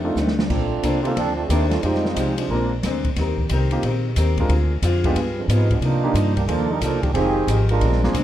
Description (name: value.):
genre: jazz, big band swing.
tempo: 180 BPM.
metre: 4/4.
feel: swing 64% on 8ths.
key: unclear.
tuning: A4 = 441 Hz.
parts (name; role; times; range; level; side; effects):
warm trombone section; second line; 0.0-2.7, 5.4-8.0 s; D3 to Bb4; -24 LUFS; right 4 dB; none.
fingerpicked steel-string acoustic guitar; accompaniment; 0.0-8.2 s; F2 to C5; -26 LUFS; left 4 dB; none.
warm concert grand piano; accompaniment; 0.0-8.1 s; Ab3 to Bb4; -25 LUFS; right 1 dB; none.
upright bass; bass; 0.0-8.2 s; F1 to C3; -21 LUFS; equal; none.
open jazz drum kit; drums; 0.2-8.2 s; crash cymbal, hi-hat, kick drum, ride cymbal, snare drum; -27 LUFS; equal; none.
room: moderate large studio reverb, RT60 1.1 s.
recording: none.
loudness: -18 LUFS.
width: side -12 dB against mid.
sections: 0.5-8.2 A section.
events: drum fill 0.2-0.5; trombone section solo 0.5-8.2.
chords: 0.5 Bbmaj9; 1.8 Fm9; 2.5 Bb9; 3.2 Eb6; 4.5 Dm7b5; 5.2 G7b9; 5.8 Cm11; 7.2 Fm9.